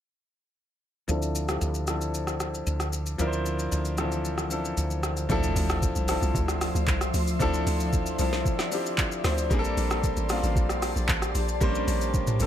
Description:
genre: amapiano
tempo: 114 BPM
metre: 4/4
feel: straight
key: D minor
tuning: A4 = 442 Hz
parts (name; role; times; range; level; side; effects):
- clear grand piano; accompaniment; 1.1-12.5 s; E3 to C5; -29 LUFS; left 1 dB; low-pass filter
- woody fretless electric bass; bass; 1.1-5.3 s; D2; -29 LUFS; equal; ensemble chorus
- smooth R&B drum kit; drums; 1.1-12.5 s; handclaps, hi-hat, kick drum, rim click, shaker, snare drum, toms; -29 LUFS; equal; none
- glassy FM pad; sustained chords; 6.0-12.5 s; F3 to D6; -34 LUFS; left 1 dB; ensemble chorus, built-in reverb, sidechain pumping
- hollow log drum bass; bass; 5.3-12.5 s; A1 to D2; -28 LUFS; equal; none
- impact; sound effects; 5.3-7.4 s; none; -35 LUFS; equal; none
room: little or no reverb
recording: none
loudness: -24 LUFS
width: side -10 dB against mid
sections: 1.1-5.3 A section; 5.3-12.5 B section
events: filter sweep on grand piano 1.1-5.3; drop 5.3-12.5; impact 5.3-7.4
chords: 1.1 Dm9; 9.5 Bbmaj13

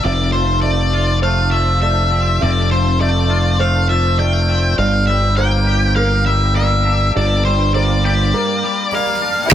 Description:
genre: rock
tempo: 101 BPM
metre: 4/4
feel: straight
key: unclear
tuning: A4 = 443 Hz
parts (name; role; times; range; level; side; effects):
- octave-fuzz lead guitar; melody; 0.0-9.5 s; C5 to G5; -18 LUFS; left 1 dB; distortion, tape echo
- felt-muted upright piano; arpeggios; 0.0-9.5 s; Bb4 to E5; -25 LUFS; right 2 dB; tape echo
- twangy electric guitar; arpeggios; 0.0-9.5 s; F2 to G4; -22 LUFS; left 1 dB; ensemble chorus, tape echo
- growling fingered electric bass; bass; 0.0-9.5 s; F1 to G1; -16 LUFS; equal; overdrive
room: light reverb, small room ambience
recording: none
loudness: -13 LUFS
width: side -10 dB against mid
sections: 0.0-9.5 A section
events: none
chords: 0.1 F6; 4.8 Gm7

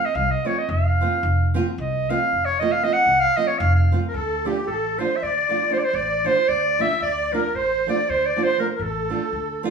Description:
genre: balkan folk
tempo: 229 BPM (eighths)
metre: 11/8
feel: straight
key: F phrygian dominant, D minor from 4.1 s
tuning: A4 = 440 Hz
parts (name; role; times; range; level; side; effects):
- clear clarinet; melody; 0.0-9.7 s; G4 to Gb5; -21 LUFS; right 2 dB; none
- nylon-string guitar; accompaniment; 0.0-9.7 s; F3 to F4; -27 LUFS; right 4 dB; none
- upright bass; bass; 0.1-9.7 s; F1 to D2; -24 LUFS; equal; none
- musette accordion; second line; 4.1-9.7 s; G4 to E5; -27 LUFS; left 2 dB; none
room: moderate large studio reverb, RT60 0.9 s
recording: band playing live in one room, studio reverb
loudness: -19 LUFS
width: side -6 dB against mid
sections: 0.0-4.1 A section; 4.1-9.7 B section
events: clarinet solo 0.0-4.1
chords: 0.0 F; 4.1 Dm

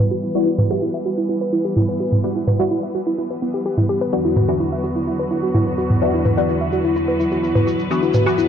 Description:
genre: melodic techno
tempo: 127 BPM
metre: 4/4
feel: straight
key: E minor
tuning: A4 = 444 Hz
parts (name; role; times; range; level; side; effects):
- clear symphonic string section; sustained chords; 0.0-8.5 s; E2 to B4; -23 LUFS; equal; none
- woody wave-folded pluck; arpeggios; 0.0-8.5 s; B3 to E5; -22 LUFS; right 1 dB; chorus, cassette tape, digital delay
- filtered dub chord stab; stabs; 0.0-8.5 s; E3 to F#4; -23 LUFS; left 2 dB; phaser, analog chorus, digital delay
- electronic toms; drums; 0.0-8.2 s; none; -20 LUFS; right 1 dB; overdrive, low-pass filter on hats, low-pass filter on toms, low-pass filter on room
- egg shaker; percussion; 0.1-8.5 s; none; -45 LUFS; right 5 dB; none
- soft octave-layered synth lead; melody; 4.1-8.5 s; E4 to F#4; -22 LUFS; left 4 dB; chorus, digital delay
room: moderate recital hall reverb, RT60 1.3 s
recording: dark, warm production, low-pass filter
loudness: -17 LUFS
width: side -8 dB against mid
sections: 0.0-8.5 A section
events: filter sweep on synth pluck 0.0-8.5; filter sweep 0.0-8.5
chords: 0.0 Emadd9; 4.1 Bm/E

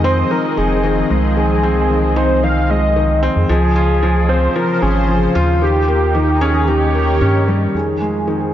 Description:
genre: piano and strings electronica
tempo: 113 BPM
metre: 4/4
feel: straight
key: F minor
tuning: A4 = 440 Hz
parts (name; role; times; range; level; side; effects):
- warm velvety synth lead; melody; 0.0-8.5 s; G4 to F5; -19 LUFS; equal; chorus, digital delay
- lush unison pad; sustained chords; 0.0-8.5 s; Db3 to Eb5; -22 LUFS; equal; chorus, phaser
- felt-muted upright piano; riff; 0.0-8.5 s; Eb3 to F4; -18 LUFS; left 1 dB; low-pass filter, digital delay
- round analog bass; bass; 0.0-8.5 s; F1 to G2; -17 LUFS; equal; none
room: light reverb, digital ambience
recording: nothing above 7.7 kHz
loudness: -13 LUFS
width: side -11 dB against mid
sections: 0.0-7.7 A section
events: none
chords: 0.0 Fm7; 3.5 Dbmaj7; 5.6 Eb7; 7.7 Fm7

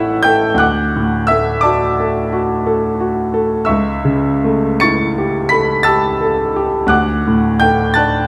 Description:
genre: classical, romantic nocturne for solo piano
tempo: 50-60 BPM (dotted quarters)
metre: 9/8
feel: rubato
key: D major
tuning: A4 = 440 Hz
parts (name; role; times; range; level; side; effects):
- clear grand piano; solo; 0.0-8.3 s; A1 to C#7; -15 LUFS; equal; none
room: moderate recital hall reverb, RT60 1.6 s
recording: none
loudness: -15 LUFS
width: mono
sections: 0.0-8.3 A section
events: none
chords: 0.0 A; 0.6 D; 3.7 A7/C#; 6.9 D

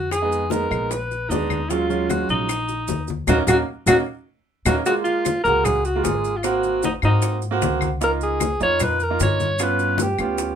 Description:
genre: Afro-Cuban jazz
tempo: 152 BPM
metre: 4/4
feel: straight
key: Eb minor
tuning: A4 = 440 Hz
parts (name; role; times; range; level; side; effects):
- breathy alto saxophone; melody; 0.0-10.6 s; Eb4 to Db5; -22 LUFS; equal; none
- upright bass; bass; 0.0-10.6 s; Ab1 to Ab2; -26 LUFS; left 1 dB; none
- bongos; percussion; 0.1-10.6 s; none; -29 LUFS; left 8 dB; none
- claves; percussion; 0.1-10.4 s; none; -28 LUFS; left 7 dB; none
- congas; percussion; 0.1-10.6 s; none; -27 LUFS; left 3 dB; none
- maracas; percussion; 0.1-10.6 s; none; -32 LUFS; right 8 dB; none
- clear baby grand piano; accompaniment; 0.2-10.5 s; Gb3 to Gb4; -25 LUFS; right 6 dB; none
room: moderate studio ambience, RT60 0.5 s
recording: minimal, uncompressed stereo recording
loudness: -18 LUFS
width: side -8 dB against mid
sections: 0.0-4.9 A section; 4.9-10.6 B section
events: band accent 3.3-4.9; drum fill 4.1-4.9; grand piano fill 4.1-4.9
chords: 0.1 Fm7b5; 0.9 Bb7b9; 1.7 Ebm11; 4.9 Gbmaj7; 6.4 Ab7; 8.0 Db6; 9.6 G7#11

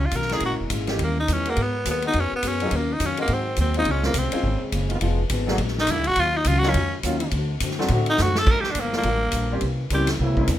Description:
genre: jazz, big band swing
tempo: 208 BPM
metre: 4/4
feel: swing 61% on 8ths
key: Eb minor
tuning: A4 = 440 Hz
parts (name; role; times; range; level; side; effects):
- growling tenor saxophone; melody; 0.0-10.2 s; Bb3 to Bb4; -24 LUFS; equal; none
- fingerpicked steel-string acoustic guitar; accompaniment; 0.0-10.6 s; G2 to Bb4; -31 LUFS; left 5 dB; none
- upright bass; bass; 0.0-10.6 s; Fb1 to A2; -25 LUFS; equal; none
- swinging big-band drum kit; drums; 0.1-10.6 s; crash cymbal, hi-hat, kick drum, ride cymbal, snare drum; -28 LUFS; equal; none
- bright upright piano; accompaniment; 0.3-10.5 s; Fb3 to Bb4; -28 LUFS; left 1 dB; none
- warm trombone section; sustained chords; 1.3-10.6 s; Db3 to Ab4; -30 LUFS; right 1 dB; none
room: moderate club reverb, RT60 0.6 s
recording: minimal, uncompressed stereo recording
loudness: -20 LUFS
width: side -12 dB against mid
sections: 0.0-8.5 A section; 8.5-10.6 A section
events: tenor saxophone solo 0.0-10.6; drum fill 8.2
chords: 0.4 Bbm7b5; 1.0 Eb7b9; 1.6 Abm9; 2.7 Ebm9; 3.3 Ab7; 3.9 Dbmaj7; 5.0 Fm7b5; 5.6 Bb7b13; 6.2 Ebm9; 7.3 D7; 8.5 Gm7; 9.6 C7b9

